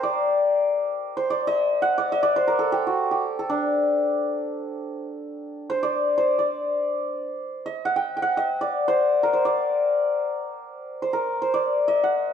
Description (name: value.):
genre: Persian modal ensemble.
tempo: free time.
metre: none.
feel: none.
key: D dastgah homayun.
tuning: A4 = 440 Hz.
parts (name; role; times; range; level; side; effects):
santur; solo; 0.0-12.3 s; D4 to G5; -21 LUFS; left 1 dB; none.
room: wet stone room reverb, RT60 1.1 s.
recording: band playing live in one room.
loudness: -21 LUFS.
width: side -8 dB against mid.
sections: 0.0-5.3 A section; 5.3-12.3 A section.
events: none.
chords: none.